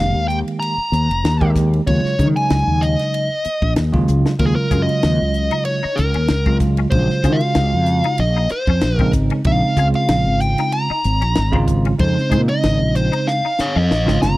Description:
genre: electric jazz fusion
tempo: 95 BPM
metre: 4/4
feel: swing 54% on 16ths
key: unclear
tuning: A4 = 440 Hz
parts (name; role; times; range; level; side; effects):
- dark smooth lead guitar; melody; 0.0-14.4 s; Ab4 to Bb5; -21 LUFS; equal; overdrive
- bell-like tine electric piano; accompaniment; 0.0-14.4 s; Db3 to G4; -20 LUFS; right 2 dB; medium stereo tremolo
- fretless electric bass; bass; 0.0-14.4 s; F1 to Eb3; -18 LUFS; equal; lush chorus
- crisp fusion drum kit; drums; 0.3-14.4 s; hi-hat, kick drum, ride cymbal, snare drum, toms; -21 LUFS; left 1 dB; none
- clean electric guitar; stabs; 4.7-14.3 s; C4 to Ab4; -30 LUFS; left 10 dB; ensemble chorus
room: studio ambience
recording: dry, close 1970s-style studio recording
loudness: -15 LUFS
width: side -18 dB against mid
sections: 0.0-14.4 A section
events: drum fill 4.1-4.4, 13.3-14.4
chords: 0.0 Fm11; 1.9 Ebm11; 8.2 Bbm11

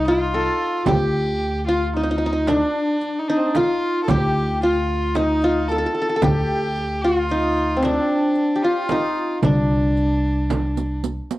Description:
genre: Arabic maqam ensemble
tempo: 112 BPM (eighths)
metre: 10/8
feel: straight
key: D maqam kurd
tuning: A4 = 442 Hz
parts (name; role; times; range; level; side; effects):
- qanun; melody; 0.0-11.0 s; C4 to A4; -21 LUFS; left 1 dB; cassette tape, plate reverb
- clear violin; second line; 0.0-11.0 s; C4 to A4; -24 LUFS; equal; cassette tape
- upright bass; bass; 0.0-11.2 s; C2 to D2; -24 LUFS; equal; none
- darbuka; percussion; 0.1-10.9 s; none; -25 LUFS; equal; none
- riq; percussion; 0.1-11.4 s; none; -31 LUFS; right 6 dB; none
- frame drum; percussion; 0.9-10.8 s; none; -26 LUFS; right 5 dB; none
room: wet studio reverb, RT60 0.6 s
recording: home recording on cassette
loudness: -18 LUFS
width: side -16 dB against mid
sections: 0.0-11.4 A section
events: drum fill 10.5-11.4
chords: none

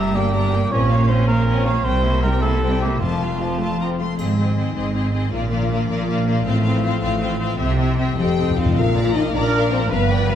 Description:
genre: cinematic, heroic adventure film score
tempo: 105 BPM (dotted quarters)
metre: 6/8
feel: straight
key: F major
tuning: A4 = 435 Hz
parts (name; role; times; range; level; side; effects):
- warm studio violin section; melody; 0.0-10.4 s; B4 to C6; -30 LUFS; left 5 dB; none
- warm cor anglais; second line; 0.0-4.0 s; F4 to E5; -24 LUFS; right 2 dB; none
- warm symphonic violin section; second line; 0.0-10.4 s; C4 to Bb5; -28 LUFS; left 5 dB; none
- rich symphonic viola section; accompaniment; 0.0-10.4 s; F3 to B4; -26 LUFS; right 1 dB; none
- concert harp; arpeggios; 0.0-10.4 s; G2 to F5; -27 LUFS; left 7 dB; none
- clear symphonic double bass section; bass; 0.0-10.4 s; F1 to C2; -22 LUFS; right 2 dB; none
- rich symphonic cello section; bass; 0.0-10.4 s; F2 to C3; -24 LUFS; right 2 dB; none
- triangle; percussion; 4.2-4.9 s; none; -48 LUFS; right 1 dB; none
- timpani; percussion; 7.6-9.3 s; F2 to C3; -25 LUFS; left 1 dB; none
- mellow French horn section; sustained chords; 8.2-10.4 s; B3 to G4; -22 LUFS; left 5 dB; none
room: wet scoring stage reverb, RT60 1.5 s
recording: dark, warm production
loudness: -17 LUFS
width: side -10 dB against mid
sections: 0.0-4.2 A section; 4.2-8.8 B section; 8.8-10.4 C section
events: timpani fill 8.2-8.8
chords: 0.0 Gm; 0.7 Bbmadd9; 1.9 C7; 3.0 F; 4.2 Ab; 5.3 Bb; 6.5 F/A; 7.6 C; 8.2 F7; 8.8 Bb

